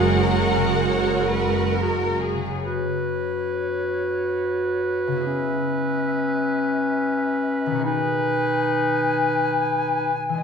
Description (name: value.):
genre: cinematic, emotional film score for orchestra.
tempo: 69 BPM.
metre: 3/4.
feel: rubato.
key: unclear.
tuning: A4 = 435 Hz.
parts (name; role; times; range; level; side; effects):
rich symphonic violin section; melody; 0.0-1.7 s; F#5; -28 LUFS; left 1 dB; none.
rich symphonic violin section; second line; 0.0-2.6 s; G#4 to C#5; -28 LUFS; left 2 dB; none.
rich symphonic viola section; accompaniment; 0.0-2.4 s; G#3 to F#4; -24 LUFS; right 4 dB; none.
concert harp; arpeggios; 0.0-10.4 s; F#2 to D#5; -29 LUFS; left 3 dB; none.
clear symphonic double bass section; bass; 0.0-2.4 s; F#1; -26 LUFS; right 3 dB; none.
rich symphonic cello section; bass; 0.0-2.2 s; A#4; -27 LUFS; right 2 dB; none.
clear cor anglais; second line; 2.6-10.1 s; B4; -26 LUFS; right 2 dB; none.
concert flute; second line; 2.6-10.4 s; C#5 to G#5; -28 LUFS; left 4 dB; none.
clear clarinet; second line; 2.7-10.1 s; C#4 to F#4; -25 LUFS; left 2 dB; none.
room: wet scoring stage reverb, RT60 1.6 s.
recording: minimal, uncompressed stereo recording.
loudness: -20 LUFS.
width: side -6 dB against mid.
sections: 0.0-2.6 A section; 2.6-10.4 B section.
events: none.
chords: 0.0 F#add9; 2.6 F#sus4; 5.3 C#m7; 7.8 G#m7.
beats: 0.86 1.75 | 2.64 3.51 4.38 | 5.25 6.12 6.99 | 7.84 8.71 9.58.